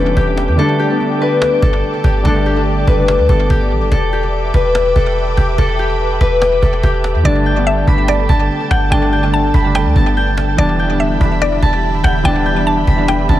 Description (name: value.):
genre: hip hop, trap.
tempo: 144 BPM.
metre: 4/4.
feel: half-time.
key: unclear.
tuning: A4 = 440 Hz.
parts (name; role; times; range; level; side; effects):
concert harp; melody; 0.0-13.4 s; G4 to B5; -18 LUFS; left 2 dB; low-pass filter, tape echo.
warbly lo-fi synth keys; accompaniment; 0.0-3.9, 7.2-13.4 s; D3 to D4; -18 LUFS; equal; chorus, low-pass filter, tape echo.
ethereal airy pad; sustained chords; 0.0-13.4 s; D3 to D6; -22 LUFS; right 1 dB; ensemble chorus, built-in reverb.
clean 808-style bass; bass; 0.0-13.4 s; E1 to E2; -15 LUFS; equal; none.
cajon; drums; 0.2-13.4 s; none; -24 LUFS; equal; tape echo.
mallet-like synth pluck; second line; 7.3-13.4 s; D5 to A5; -21 LUFS; left 2 dB; chorus, tape echo.
room: light reverb, small room ambience.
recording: echo-heavy mix.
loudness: -12 LUFS.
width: side -13 dB against mid.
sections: 0.0-7.2 A section; 7.2-13.4 B section.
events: kick muted 0.6-1.4.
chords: 0.0 Em7; 0.6 Gsus2; 3.9 Em7; 7.2 Gsus2; 10.6 Em7.